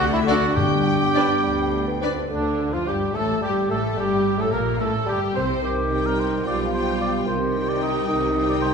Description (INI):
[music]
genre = quick classical-period movement for symphony orchestra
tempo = 67-75 BPM (dotted quarters)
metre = 6/8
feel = rubato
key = G minor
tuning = A4 = 440 Hz
[part]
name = mellow clarinet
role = second line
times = 0.0-8.7 s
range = D4 to C5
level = -30 LUFS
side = right 4 dB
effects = none
[part]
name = mellow hollow silver concert flute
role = second line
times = 0.0-2.0 s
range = E5 to G5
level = -31 LUFS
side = left 2 dB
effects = none
[part]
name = rich studio violin section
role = second line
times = 0.0-8.7 s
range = D4 to G5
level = -31 LUFS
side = left 3 dB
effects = none
[part]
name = warm oboe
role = second line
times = 0.0-8.7 s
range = D4 to Eb5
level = -27 LUFS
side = right 1 dB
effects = none
[part]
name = dark French horn section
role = sustained chords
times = 0.0-8.7 s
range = D3 to F4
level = -27 LUFS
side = left 2 dB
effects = none
[part]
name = rich studio cello section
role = bass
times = 0.0-8.7 s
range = D2 to D3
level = -30 LUFS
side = right 2 dB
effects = none
[part]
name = warm studio double bass section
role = bass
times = 0.0-8.7 s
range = G1 to D2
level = -30 LUFS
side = right 2 dB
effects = none
[part]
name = warm studio violin section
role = melody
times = 0.3-8.7 s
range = D4 to G5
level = -32 LUFS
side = left 7 dB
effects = none
[part]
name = warm studio viola section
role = accompaniment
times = 0.3-8.7 s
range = D3 to B4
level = -29 LUFS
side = right 1 dB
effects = none
[part]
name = timpani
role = percussion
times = 0.6-1.4 s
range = G2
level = -27 LUFS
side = left 3 dB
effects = none
[part]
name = mellow bassoon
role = accompaniment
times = 1.4-8.7 s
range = D3 to C4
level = -28 LUFS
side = equal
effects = none
[sound]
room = wet scoring stage reverb, RT60 1.8 s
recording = minimal, uncompressed stereo recording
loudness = -20 LUFS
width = side -6 dB against mid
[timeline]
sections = 0.0-2.3 A section; 2.3-8.7 B section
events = none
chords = 0.0 D5; 0.6 G; 2.3 G5/D; 3.2 Gsus2; 4.0 Gm; 5.6 Cm; 6.5 G7/B; 7.3 Cm